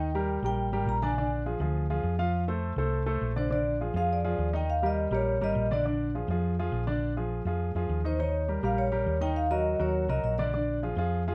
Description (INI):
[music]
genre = Afro-Cuban jazz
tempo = 205 BPM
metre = 4/4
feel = straight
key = Bb mixolydian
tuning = A4 = 442 Hz
[part]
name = vibraphone with medium mallets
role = melody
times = 0.0-1.3, 3.4-10.8 s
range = C5 to Bb5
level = -34 LUFS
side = equal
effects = none
[part]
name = warm concert grand piano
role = accompaniment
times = 0.0-11.3 s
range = D3 to F5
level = -33 LUFS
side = equal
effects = none
[part]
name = hollow-body short-scale fingered electric bass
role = bass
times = 0.0-11.3 s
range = Ab1 to F2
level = -33 LUFS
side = equal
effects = none
[sound]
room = light reverb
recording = none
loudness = -29 LUFS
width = mono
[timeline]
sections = 0.0-3.5 A section; 3.5-11.3 A section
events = none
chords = 0.0 Eb; 1.2 Bb7; 2.3 F; 3.5 Bb7; 4.7 Eb7; 5.8 Bb7; 8.2 Eb7; 9.4 Ebm7; 10.5 Bb7